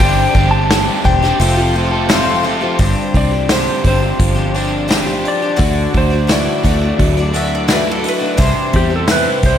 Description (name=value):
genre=folk rock and heartland rock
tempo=86 BPM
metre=4/4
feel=straight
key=unclear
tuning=A4 = 440 Hz
part: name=electric slide guitar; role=melody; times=0.0-9.6 s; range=G4 to A5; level=-20 LUFS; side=left 1 dB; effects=slapback echo
part: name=picked twelve-string acoustic guitar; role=accompaniment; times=0.0-9.6 s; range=G2 to D5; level=-20 LUFS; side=left 4 dB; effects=slapback echo
part: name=tonewheel organ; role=sustained chords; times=0.0-2.8 s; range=G3 to G4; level=-26 LUFS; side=right 1 dB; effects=none
part: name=crunchy overdriven guitar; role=riff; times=0.0-9.6 s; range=G2 to A4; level=-20 LUFS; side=right 1 dB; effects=slapback echo
part: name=fingered electric bass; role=bass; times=0.0-9.6 s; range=E1 to E2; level=-18 LUFS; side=right 1 dB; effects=none
part: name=unplugged drum kit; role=drums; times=0.0-9.6 s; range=hi-hat, kick drum, snare drum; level=-17 LUFS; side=equal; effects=none
part: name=bowl-back mandolin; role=second line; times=7.4-8.7 s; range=A4 to E5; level=-23 LUFS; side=right 1 dB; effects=slapback echo
room=light reverb, studio reverb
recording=none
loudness=-12 LUFS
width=side -9 dB against mid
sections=0.0-2.8 A section; 2.8-9.6 B section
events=electric slide guitar solo 2.8-9.6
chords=0.0 Gsus4; 1.4 Fadd9; 2.8 G7sus4; 5.6 Dadd9; 8.4 Cadd9